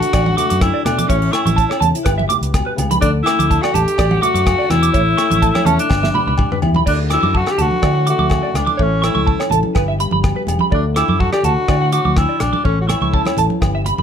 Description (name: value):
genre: highlife guitar band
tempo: 124 BPM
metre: 4/4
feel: swing 53% on 16ths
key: D major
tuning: A4 = 441 Hz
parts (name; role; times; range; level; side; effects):
- raspy alto saxophone; melody; 0.0-13.4 s; C#4 to G4; -19 LUFS; left 1 dB; none
- fingerpicked old ladder-braced acoustic guitar; accompaniment; 0.0-14.0 s; G2 to A4; -25 LUFS; left 8 dB; none
- damped 70s drum kit; drums; 0.0-14.0 s; crash cymbal, hi-hat, kick drum, rim click, snare drum, toms; -20 LUFS; equal; none
- semi-hollow electric guitar; arpeggios; 0.1-14.0 s; A4 to D6; -21 LUFS; right 5 dB; analog chorus, slapback echo
- fingered electric bass; bass; 0.1-14.0 s; E1 to D3; -19 LUFS; equal; none
- agogo bells; percussion; 0.1-13.7 s; none; -28 LUFS; left 3 dB; none
- congas; percussion; 0.3-14.0 s; none; -24 LUFS; right 4 dB; none
room: moderate studio reverb, RT60 0.6 s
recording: none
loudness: -13 LUFS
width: side -8 dB against mid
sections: 0.0-6.9 A section; 6.9-14.0 B section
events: drum fill 5.9-6.9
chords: 0.0 D; 1.1 A; 2.1 G; 3.0 D; 4.9 A; 5.9 G6; 6.9 D; 8.8 A; 9.8 G6; 10.7 D; 12.7 A